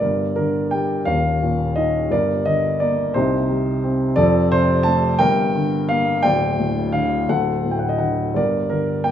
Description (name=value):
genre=classical, lyrical solo piano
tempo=57 BPM (dotted quarters)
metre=6/8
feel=rubato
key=G minor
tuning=A4 = 441 Hz
part: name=dark baby grand piano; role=solo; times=0.0-9.1 s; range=D1 to A5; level=-17 LUFS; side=equal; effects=none
room=moderate recital hall reverb, RT60 1.4 s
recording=minimal, uncompressed stereo recording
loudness=-17 LUFS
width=side -9 dB against mid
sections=0.0-9.1 A section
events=none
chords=0.0 Gm; 1.1 Eb5; 2.1 Gm; 3.1 Cm; 4.2 F; 5.2 Gm; 6.2 Dsus4; 8.3 Gm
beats=| 0.01 1.06 | 2.11 3.14 | 4.17 5.19 | 6.23 7.28 | 8.34